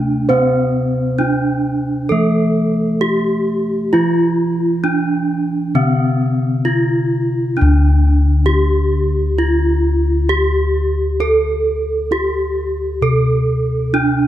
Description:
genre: Javanese gamelan.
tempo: 66 BPM.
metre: 4/4.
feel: straight.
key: D slendro.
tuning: A4 = 438 Hz.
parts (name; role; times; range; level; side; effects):
gamelan-type bronze metallophone; melody; 0.0-14.3 s; C4-25c to A4; -17 LUFS; right 1 dB; none.
gamelan-type bronze metallophone; accompaniment; 0.0-7.6 s; C3-25c to A3; -20 LUFS; equal; none.
gamelan-type bossed gongs; bass; 0.0-14.3 s; D2 to C5-25c; -17 LUFS; left 1 dB; none.
room: light reverb.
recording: none.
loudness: -14 LUFS.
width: side -12 dB against mid.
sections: 0.0-7.6 A section; 7.6-14.3 A section.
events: none.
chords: none.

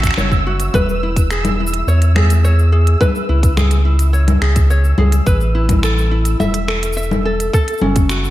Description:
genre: folktronica.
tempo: 106 BPM.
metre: 4/4.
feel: straight.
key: A major.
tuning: A4 = 440 Hz.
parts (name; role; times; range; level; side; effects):
ukulele; arpeggios; 0.0-8.3 s; C#4 to E5; -21 LUFS; equal; analog delay.
warm sub bass; bass; 0.0-8.3 s; E1 to E2; -14 LUFS; equal; none.
electronic kick drum; drums; 0.0-8.1 s; none; -15 LUFS; equal; none.
organic electronic drum kit; drums; 0.0-8.3 s; cabasa, congas, finger snaps, hi-hat; -21 LUFS; left 2 dB; none.
flickering grainy texture; texture; 0.0-8.3 s; E6; -26 LUFS; right 3 dB; built-in reverb.
room: light reverb.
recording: vinyl crackle.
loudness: -12 LUFS.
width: side -15 dB against mid.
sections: 0.0-8.3 A section.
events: none.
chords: 0.0 F#m; 0.7 E6; 3.0 C#m7; 5.3 Asus2; 7.5 F#m.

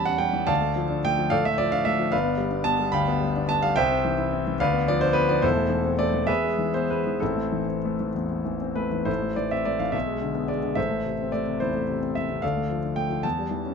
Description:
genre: classical, romantic character piece for solo piano.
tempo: 63-75 BPM (dotted quarters).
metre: 6/8.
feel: rubato.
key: A minor.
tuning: A4 = 440 Hz.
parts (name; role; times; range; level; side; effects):
warm concert grand piano; solo; 0.0-13.7 s; E1 to B5; -22 LUFS; equal; none.
room: light reverb.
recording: close, detailed microphones.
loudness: -22 LUFS.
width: side -6 dB against mid.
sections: 0.0-9.1 A section; 9.1-13.7 B section.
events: none.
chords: 0.5 Dm; 2.1 G7; 3.8 C; 4.6 Bdim/D; 5.4 Am/E; 6.3 E; 7.2 Am; 9.9 G#dim/B; 10.8 Am; 12.4 Dm; 13.2 C#dim/E.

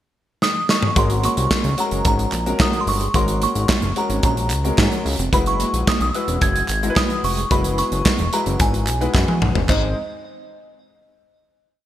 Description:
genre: early-eighties boogie funk.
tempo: 110 BPM.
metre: 4/4.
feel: straight.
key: unclear.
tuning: A4 = 440 Hz.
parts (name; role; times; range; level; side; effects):
glassy synth bell; melody; 0.4-9.9 s; Eb5 to Ab6; -24 LUFS; right 1 dB; chorus.
modern studio drum kit; drums; 0.4-9.8 s; china cymbal, hi-hat, kick drum, snare drum, toms; -20 LUFS; equal; gated reverb.
warm concert grand piano; accompaniment; 1.0-9.9 s; Ab3 to C5; -26 LUFS; left 4 dB; analog chorus.
electric guitar at the edge of break-up; riff; 1.0-9.9 s; Ab3 to Eb4; -32 LUFS; right 6 dB; none.
fat analog bass; bass; 1.0-9.9 s; Fb1 to Ab2; -22 LUFS; equal; none.
group handclap; percussion; 1.5-9.9 s; none; -32 LUFS; right 3 dB; none.
room: light reverb, studio ambience.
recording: bright 1980s-style digital production.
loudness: -17 LUFS.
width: side -12 dB against mid.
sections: 0.0-1.0 pickup bar; 1.0-9.7 verse; 9.7-11.9 final chord.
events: drum fill 0.4-1.0, 9.1-9.7.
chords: 0.0 N.C.; 1.0 Ab9sus4; 5.3 Gb9sus4; 9.7 Ab.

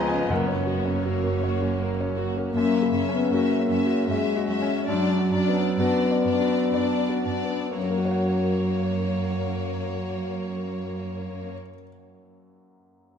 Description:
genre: classical, romantic movement for piano and orchestra.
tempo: 55-83 BPM.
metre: 3/4.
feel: rubato.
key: F# major.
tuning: A4 = 441 Hz.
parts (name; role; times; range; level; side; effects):
clear baby grand piano; melody; 0.0-13.2 s; C#2 to A#5; -28 LUFS; equal; none.
rich studio violin section; melody; 0.0-2.3 s; C#5 to D#5; -38 LUFS; left 8 dB; none.
rich studio violin section; second line; 0.0-11.5 s; A#3 to E5; -30 LUFS; left 4 dB; none.
rich studio viola section; accompaniment; 0.0-2.3 s; A#3 to B3; -35 LUFS; right 3 dB; none.
mellow French horn section; sustained chords; 0.0-11.5 s; E#3 to B3; -26 LUFS; left 2 dB; none.
rich studio cello section; bass; 0.0-11.5 s; F#2 to C#3; -33 LUFS; right 4 dB; none.
rich studio double bass section; bass; 0.0-2.3 s; F#1 to C#2; -32 LUFS; right 5 dB; none.
timpani; percussion; 0.3-1.4 s; F#2; -34 LUFS; right 1 dB; none.
room: moderate concert hall reverb, RT60 2.1 s.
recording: none.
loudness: -22 LUFS.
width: side -7 dB against mid.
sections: 0.0-2.5 A section; 2.5-7.8 B section; 7.8-13.2 C section.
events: slowing down 1.4-7.8.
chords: 0.3 F#; 2.5 F#7; 4.9 Bm/F#; 7.8 F#.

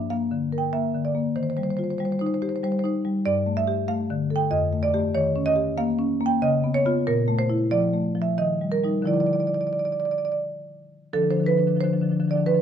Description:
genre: classical, contemporary piece for solo marimba.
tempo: 86-96 BPM.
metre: 3/4.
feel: rubato.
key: unclear.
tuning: A4 = 441 Hz.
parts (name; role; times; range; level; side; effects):
marimba with medium hard mallets; solo; 0.0-12.6 s; F2 to G5; -21 LUFS; equal; none.
room: moderate stone room reverb, RT60 1.0 s.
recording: dark, warm production.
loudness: -21 LUFS.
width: side -8 dB against mid.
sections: 0.0-11.1 A section; 11.1-12.6 A section.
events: none.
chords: 0.0 Gm; 1.4 Eb69; 3.2 Gsus2; 4.5 F9; 5.1 Eb7; 6.4 C#9; 7.1 Bb5; 8.4 Eb; 9.1 Dmadd9; 11.1 Dm.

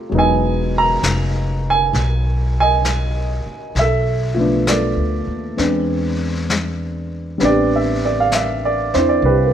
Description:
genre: jazz ballad.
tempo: 66 BPM.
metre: 4/4.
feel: swing 68% on 8ths.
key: unclear.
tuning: A4 = 441 Hz.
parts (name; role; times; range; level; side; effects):
dark baby grand piano; accompaniment; 0.0-9.5 s; F3 to Bb5; -17 LUFS; right 2 dB; none.
upright bass; bass; 0.1-9.5 s; E1 to E2; -20 LUFS; equal; none.
vintage brush drum kit; drums; 0.1-9.5 s; brushed snare drum, hi-hat, snare drum; -25 LUFS; left 3 dB; none.
room: light reverb.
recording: none.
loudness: -15 LUFS.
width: side -9 dB against mid.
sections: 0.0-9.5 A section.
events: none.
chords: 0.1 Emaj9; 3.7 Bm7b5; 5.6 E7b13; 7.4 Am11.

